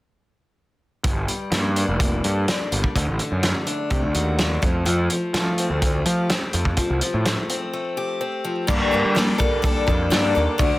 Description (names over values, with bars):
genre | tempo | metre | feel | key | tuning
quiet-loud alternative rock | 126 BPM | 4/4 | straight | G minor | A4 = 441 Hz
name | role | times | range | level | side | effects
picked steel-string acoustic guitar | arpeggios | 1.0-10.8 s | G2 to A4 | -24 LUFS | left 2 dB | slapback echo
fuzz picked electric bass | bass | 1.0-10.7 s | F1 to G3 | -23 LUFS | equal | overdrive
loose indie drum kit | drums | 1.0-10.7 s | crash cymbal, hi-hat, kick drum, snare drum | -22 LUFS | equal | none
room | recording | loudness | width
little or no reverb | dense, heavily limited modern master | -19 LUFS | side -18 dB against mid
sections
1.0-8.7 A section; 8.7-10.8 B section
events
break 7.7-8.7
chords
1.0 Gmadd9; 3.0 D; 4.6 Fadd9; 8.7 Gmadd9